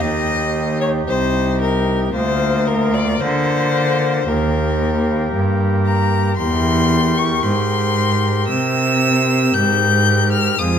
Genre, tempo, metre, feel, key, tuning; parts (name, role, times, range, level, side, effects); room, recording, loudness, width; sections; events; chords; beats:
classical, baroque-style sonata movement with continuo; 57 BPM; 4/4; straight; A4 = 438 Hz
rich violin; melody; 0.0-10.8 s; Bb4 to G6; -20 LUFS; left 5 dB
pipe organ, cornet; accompaniment; 0.0-10.8 s; C2 to Bb4; -21 LUFS; left 1 dB
rich cello; bass; 0.0-10.8 s; C2 to D3; -18 LUFS; right 2 dB
moderate recital hall reverb, RT60 1.5 s; -15 LUFS; side -8 dB against mid
0.0-10.8 A section
0.0 Eb; 2.1 Bb/D; 4.3 Eb; 6.4 C7/E
0.02 1.08 | 2.14 3.21 4.27 5.33 | 6.39 7.44 8.49 9.55 | 10.60